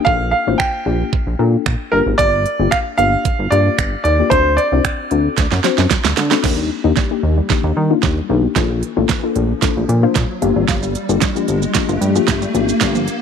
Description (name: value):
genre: dance-pop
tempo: 113 BPM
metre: 4/4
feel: straight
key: G minor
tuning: A4 = 440 Hz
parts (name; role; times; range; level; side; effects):
- clear concert grand piano; melody; 0.0-5.6 s; Bb4 to G5; -17 LUFS; right 2 dB; slapback echo
- soft round pluck; accompaniment; 0.1-13.1 s; Bb3 to C5; -20 LUFS; left 14 dB; chorus, sidechain pumping
- chorused synth bass; bass; 0.1-13.1 s; G1 to Eb3; -17 LUFS; equal; sidechain pumping
- pop drum kit; drums; 0.1-13.2 s; crash cymbal, finger snaps, hi-hat, kick drum, shaker, snare drum; -18 LUFS; right 4 dB; none
- tight sequenced synth; arpeggios; 6.4-13.1 s; Eb3 to F4; -26 LUFS; equal; chorus, sidechain pumping, slapback echo
- riser; sound effects; 8.8-13.2 s; none; -25 LUFS; right 1 dB; none
room: little or no reverb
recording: 1960s-style stereo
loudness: -14 LUFS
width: side -7 dB against mid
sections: 0.0-6.4 A section; 6.4-13.2 B section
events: drum fill 5.4-6.4, 6.4-13.2; build-up 6.4-13.2; riser 8.8-13.2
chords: 0.1 Bbmaj7; 1.9 Gm7; 4.3 D7; 6.4 Ebmaj7; 8.6 Bbmaj7; 10.4 Gm7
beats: | 0.07 0.60 1.13 1.66 | 2.19 2.72 3.25 3.78 | 4.31 4.84 5.38 5.91 | 6.44 6.97 7.50 8.03 | 8.56 9.09 9.62 10.15 | 10.69 11.22 11.75 12.28 | 12.81